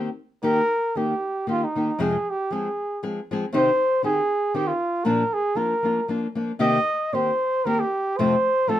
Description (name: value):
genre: mexican folk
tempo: 117 BPM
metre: 3/4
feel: swing 54% on 8ths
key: unclear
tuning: A4 = 436 Hz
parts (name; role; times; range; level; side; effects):
- nylon-string guitar; accompaniment; 0.0-8.8 s; F2 to Ab4; -24 LUFS; left 2 dB; none
- breathy trumpet; melody; 0.4-8.8 s; Eb4 to Eb5; -22 LUFS; right 1 dB; none
room: moderate studio reverb, RT60 0.5 s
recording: minimal, uncompressed stereo recording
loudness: -21 LUFS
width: side -12 dB against mid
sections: 0.0-8.8 A section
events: none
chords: 0.4 Eb; 2.0 Fm; 3.5 Cm; 5.1 Bb; 6.6 Cm7; 8.2 F